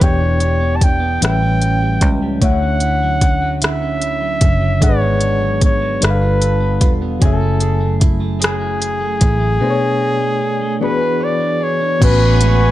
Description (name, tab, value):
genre	slow six-eight R&B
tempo	50 BPM (dotted quarters)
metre	6/8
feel	straight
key	A major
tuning	A4 = 440 Hz
part	warm flugelhorn	melody	0.0-12.7 s	G#4 to A5	-19 LUFS	equal	none
part	electric guitar at the edge of break-up	second line	0.0-12.7 s	G#2 to C#5	-23 LUFS	right 4 dB	none
part	barky reed electric piano	accompaniment	0.0-12.7 s	A2 to G#5	-22 LUFS	left 4 dB	overdrive, fast tremolo
part	fingered electric bass	bass	0.0-12.7 s	E1 to D2	-17 LUFS	equal	none
part	smooth R&B drum kit	drums	0.0-12.6 s	crash cymbal, hi-hat, kick drum, rim click	-15 LUFS	equal	vintage 12-bit sampler grit
part	warm analog pad	sustained chords	12.0-12.7 s	B4 to C#6	-26 LUFS	left 1 dB	chorus
part	clear horn section	stabs	12.0-12.7 s	C#4 to G#5	-24 LUFS	right 1 dB	none
room	little or no reverb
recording	none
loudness	-13 LUFS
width	side -14 dB against mid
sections	0.0-12.0 A section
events	none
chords	0.0 Em7; 1.2 A13; 2.4 Dmaj9; 4.8 G#m7b5; 6.0 G9; 7.2 F#m9; 9.6 Bm7; 10.8 E13; 12.0 Amaj13